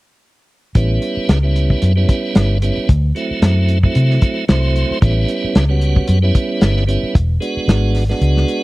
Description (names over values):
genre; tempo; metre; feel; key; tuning
straight-eighth soul blues; 113 BPM; 4/4; swing 55% on 16ths; A mixolydian; A4 = 440 Hz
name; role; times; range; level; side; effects
tonewheel organ; accompaniment; 0.7-8.6 s; F#3 to C5; -20 LUFS; right 3 dB; slow rotary speaker
vintage muted fingered electric bass; bass; 0.8-8.4 s; E1 to C3; -14 LUFS; equal; none
warm soul drum kit; drums; 0.8-8.6 s; hi-hat, kick drum, snare drum; -15 LUFS; equal; none
room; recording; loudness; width
studio ambience; dry, close 1970s-style studio recording; -13 LUFS; side -20 dB against mid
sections
0.8-8.6 A section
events
tonewheel organ fill 4.2-5.0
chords
0.8 A7; 2.9 D7; 5.0 A7; 7.2 E7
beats
| 0.76 1.29 1.82 2.36 | 2.89 3.42 3.96 4.49 | 5.02 5.55 6.09 6.62 | 7.15 7.69 8.22